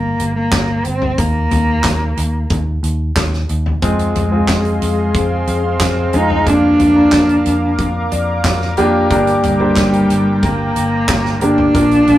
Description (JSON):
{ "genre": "piano-driven pop", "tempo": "91 BPM", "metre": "4/4", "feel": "straight", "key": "unclear", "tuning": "A4 = 442 Hz", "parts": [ { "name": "dark cello", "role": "melody", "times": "0.0-12.2 s", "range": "G3 to Eb4", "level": "-15 LUFS", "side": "equal", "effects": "none" }, { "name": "vintage muted picked electric bass", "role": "bass", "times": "0.0-12.2 s", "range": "G1 to F2", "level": "-19 LUFS", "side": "equal", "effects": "none" }, { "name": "loose indie drum kit", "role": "drums", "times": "0.2-12.2 s", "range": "handclaps, hi-hat, kick drum, snare drum, toms", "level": "-20 LUFS", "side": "equal", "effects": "none" }, { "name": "warm concert grand piano", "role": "accompaniment", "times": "3.8-12.2 s", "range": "G2 to Bb5", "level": "-18 LUFS", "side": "equal", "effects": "none" }, { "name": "warm analog pad", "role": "sustained chords", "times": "3.8-12.2 s", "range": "Ab4 to D6", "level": "-23 LUFS", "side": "left 1 dB", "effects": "chorus" } ], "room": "moderate small room reverb, RT60 0.6 s", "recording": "rough rehearsal-room recording, tube saturation", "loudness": "-12 LUFS", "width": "side -14 dB against mid", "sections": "0.0-12.2 A section", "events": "grand piano fill 7.8-9.1", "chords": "0.0 Gmadd11; 1.2 Eb5; 3.8 Fm; 6.5 Bb/F; 9.1 Gm" }